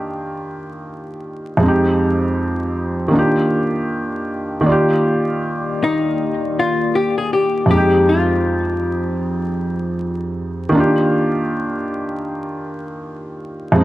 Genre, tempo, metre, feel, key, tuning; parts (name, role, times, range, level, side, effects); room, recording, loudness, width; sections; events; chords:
hip hop; 79 BPM; 4/4; swing 59% on 16ths; Eb major; A4 = 440 Hz
felt-muted upright piano; accompaniment; 0.0-13.8 s; F2 to D5; -17 LUFS; right 1 dB; cassette tape, low-pass filter
deep dark ambient pad; sustained chords; 5.3-7.7, 13.8 s; Eb3 to D5; -27 LUFS; left 3 dB; chorus, built-in reverb, low-pass filter
archtop guitar, miked and amplified; melody; 5.8-10.3 s; Eb4 to Ab4; -19 LUFS; left 3 dB; low-pass filter, analog delay
moderate spring reverb, RT60 1.6 s, small room ambience; vinyl crackle; -16 LUFS; side -16 dB against mid
0.0-4.7 A section; 4.7-13.8 A section
0.0 Ebmaj7; 1.6 Fm7; 3.1 Ebmaj7; 7.7 Fm7; 10.7 Ebmaj7